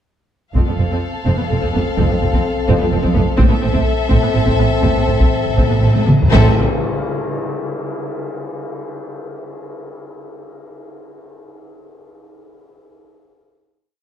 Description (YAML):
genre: cinematic, epic orchestral film score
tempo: 83 BPM (dotted quarters)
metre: 6/8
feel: uneven beats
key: A minor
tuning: A4 = 438 Hz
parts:
  - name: clear symphonic violin section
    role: melody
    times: 0.5-6.6 s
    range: E5 to F5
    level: -26 LUFS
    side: left 5 dB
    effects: none
  - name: rich symphonic viola section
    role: accompaniment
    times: 0.5-6.6 s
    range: B3 to C4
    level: -24 LUFS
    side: right 1 dB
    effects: none
  - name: taiko ensemble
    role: drums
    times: 0.5-7.3 s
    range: none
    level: -18 LUFS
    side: equal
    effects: none
  - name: warm symphonic violin section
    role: second line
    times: 0.6-6.6 s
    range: A4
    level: -26 LUFS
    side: left 2 dB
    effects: none
  - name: mellow French horn section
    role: sustained chords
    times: 0.6-6.5 s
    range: C4 to A4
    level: -22 LUFS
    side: left 4 dB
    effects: none
  - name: clear studio cello section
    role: bass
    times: 0.6-6.6 s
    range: F2 to A2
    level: -20 LUFS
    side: right 3 dB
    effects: none
  - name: warm symphonic double bass section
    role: bass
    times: 0.6-6.6 s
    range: F1 to A1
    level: -21 LUFS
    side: right 3 dB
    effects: none
  - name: cymbal swell and tam-tam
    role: percussion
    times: 3.4-8.3 s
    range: none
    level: -26 LUFS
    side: left 2 dB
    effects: none
  - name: timpani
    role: percussion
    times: 3.4-6.6 s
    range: A2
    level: -21 LUFS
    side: left 1 dB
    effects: none
room: light reverb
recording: dark, warm production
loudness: -14 LUFS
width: side -10 dB against mid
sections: 0.6-6.3 theme; 6.3-7.8 final chord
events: timpani fill 3.4-6.3; drum fill 6.0-6.3; band accent 6.3-6.8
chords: 0.6 F; 3.4 Am